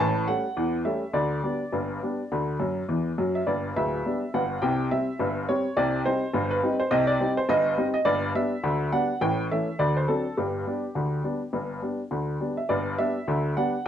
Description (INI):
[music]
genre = ragtime piano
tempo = 104 BPM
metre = 2/4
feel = swing 57% on 16ths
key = G major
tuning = A4 = 441 Hz
[part]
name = clear upright piano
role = solo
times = 0.0-13.9 s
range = D1 to A5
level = -24 LUFS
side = equal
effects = none
[sound]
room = moderate studio reverb, RT60 0.6 s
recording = worn, warbling old tape, cassette tape, warbly pitch drift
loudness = -24 LUFS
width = side -9 dB against mid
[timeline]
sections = 0.0-12.7 A section; 12.7-13.9 A section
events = upright piano fill 2.6-3.5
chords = 0.0 A7; 1.2 G/D; 2.3 D; 3.5 G; 4.6 C; 5.8 Cm; 8.1 G; 9.2 A7; 9.8 D7; 10.4 G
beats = | 0.00 0.58 | 1.16 1.74 | 2.31 2.89 | 3.47 4.05 | 4.62 5.20 | 5.77 6.35 | 6.92 7.50 | 8.07 8.65 | 9.22 9.80 | 10.38 10.96 | 11.54 12.12 | 12.70 13.28 | 13.86